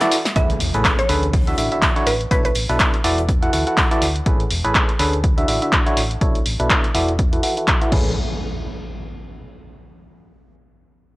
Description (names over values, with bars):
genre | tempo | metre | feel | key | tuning
piano house | 123 BPM | 4/4 | swing 57% on 16ths | A major | A4 = 440 Hz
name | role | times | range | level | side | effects
barking FM electric piano | riff | 0.0-8.1 s | A2 to F#5 | -22 LUFS | equal | chorus, cassette tape, sidechain pumping, low-pass filter, tape echo
deep reggae drum kit | drums | 0.0-4.2 s | hi-hat, snare drum | -35 LUFS | left 2 dB | none
punchy analog drum machine | drums | 0.0-8.0 s | crash cymbal, handclaps, hi-hat, snare drum, tambourine | -21 LUFS | equal | none
mallet-like synth pluck | melody | 0.4-2.5 s | B4 to E5 | -25 LUFS | right 1 dB | chorus, cassette tape, tape echo
hollow-body short-scale fingered electric bass | bass | 0.4-8.1 s | E1 to D2 | -24 LUFS | equal | sidechain pumping
electronic kick drum | drums | 0.4-8.0 s | none | -19 LUFS | equal | none
impact | sound effects | 0.4-2.3, 7.9-9.9 s | none | -28 LUFS | equal | none
room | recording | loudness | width
little or no reverb | dry, gritty hardware recording | -16 LUFS | side -20 dB against mid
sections
0.4-8.2 A section; 8.2-10.1 B section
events
break 0.0-0.4; drum fill 0.0-0.4; impact 0.4-2.3; filter sweep on FM electric piano 0.4-8.2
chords
0.4 Amaj9; 1.3 Dmaj9; 2.3 Bm11; 3.0 E9sus4; 4.3 Amaj9; 5.2 Dmaj9; 6.2 Bm11; 6.9 E9sus4; 7.9 Amaj9; 8.2 N.C.